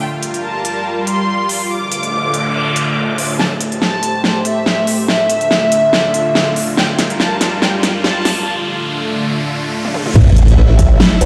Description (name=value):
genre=heavy wobble dubstep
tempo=142 BPM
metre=4/4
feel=swing 55% on 16ths, half-time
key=A phrygian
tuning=A4 = 438 Hz
part: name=rich studio violin section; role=melody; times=0.0-8.4 s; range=E5 to D6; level=-21 LUFS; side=equal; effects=dub echo
part: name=supersaw pad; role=sustained chords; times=0.0-11.3 s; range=D3 to E5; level=-22 LUFS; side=equal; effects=sidechain pumping, low-pass filter
part: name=big-room dance drum kit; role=drums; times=0.2-11.3 s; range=crash cymbal, hi-hat, snare drum, toms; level=-19 LUFS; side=equal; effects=high-pass filter on snare, studio reverb, high-pass filter on hats, high-pass filter on toms, high-pass filter on cymbals
part: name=noise sweep, riser and sub drop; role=sound effects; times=1.9-11.3 s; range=none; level=-23 LUFS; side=equal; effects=none
part: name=growl bass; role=bass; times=10.2-11.0 s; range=A1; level=-13 LUFS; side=equal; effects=chorus, overdrive
part: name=electronic kick drum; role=drums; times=10.2-10.9 s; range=none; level=-14 LUFS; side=equal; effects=studio reverb
part: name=formant-sweep wobble bass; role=bass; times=11.2-11.3 s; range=A1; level=-13 LUFS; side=equal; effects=chorus, overdrive
room=moderate lush hall reverb, RT60 2.2 s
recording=played on a big sound system in a bare room, stone room reverb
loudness=-15 LUFS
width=mono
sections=0.0-3.4 A section; 3.4-10.2 B section; 10.2-11.3 C section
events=noise sweep 1.9-3.4; build-up 3.4-10.2; drum fill 3.4-8.5, 9.8-10.2; riser 3.4-10.2; filter sweep on supersaw synth 3.4-10.2; break 8.5-10.2; drop 10.2-11.3; impact 10.2-11.3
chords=0.0 Gm7; 1.7 Dm; 3.4 Am7; 5.1 Dm; 6.8 Gm7; 8.5 Dm; 10.2 A5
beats=| 0.01 0.44 0.86 1.28 | 1.70 2.13 2.55 2.97 | 3.40 3.82 4.24 4.66 | 5.08 5.51 5.93 6.35 | 6.78 7.20 7.62 8.04 | 8.46 8.89 9.31 9.73 | 10.15 10.58 11.00